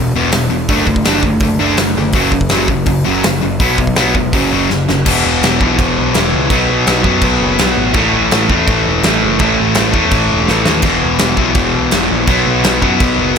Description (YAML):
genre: punk rock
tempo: 166 BPM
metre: 4/4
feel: straight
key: unclear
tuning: A4 = 440 Hz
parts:
  - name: crunchy overdriven guitar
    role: riff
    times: 0.0-13.4 s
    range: E2 to D4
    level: -17 LUFS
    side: right 13 dB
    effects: none
  - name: distorted electric guitar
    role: riff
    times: 0.0-13.4 s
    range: E2 to D4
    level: -15 LUFS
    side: left 12 dB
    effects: overdrive
  - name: fuzz picked electric bass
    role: bass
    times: 0.0-13.4 s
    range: E1 to F#2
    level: -19 LUFS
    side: equal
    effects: overdrive
  - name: big rock drum kit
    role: drums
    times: 0.3-13.4 s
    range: crash cymbal, hi-hat, kick drum, snare drum, splash cymbal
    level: -16 LUFS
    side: equal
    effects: none
room: little or no reverb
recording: none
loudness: -10 LUFS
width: side -6 dB against mid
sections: 0.0-5.1 A section; 5.1-13.4 B section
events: drum fill 4.7-5.1, 10.5-10.8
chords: 0.0 E5; 0.7 D/F#; 2.1 F#5; 3.6 B5; 4.3 F#5; 5.1 E5; 6.5 B5; 7.9 A5; 10.8 E5; 12.3 B5